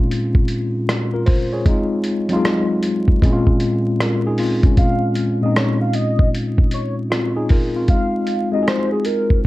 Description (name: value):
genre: lo-fi hip hop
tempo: 77 BPM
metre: 4/4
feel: swing 64% on 16ths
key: Bb minor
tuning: A4 = 440 Hz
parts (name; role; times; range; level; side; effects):
- mellow tine electric piano; accompaniment; 0.0-9.5 s; Bb2 to Db5; -18 LUFS; left 1 dB; medium stereo tremolo, cassette tape
- lo-fi sampler-style drum kit; drums; 0.1-9.5 s; hi-hat, kick drum, rim click; -17 LUFS; equal; vintage 12-bit sampler grit
- warm velvety synth lead; melody; 4.8-9.4 s; Ab4 to F5; -24 LUFS; equal; chorus, analog delay
room: light reverb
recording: dark, warm production, vinyl crackle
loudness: -16 LUFS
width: side -17 dB against mid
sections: 0.0-4.8 A section; 4.8-9.5 B section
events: none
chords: 0.0 Bbm7; 1.6 Fm7; 3.2 Bbm7; 7.9 Fm7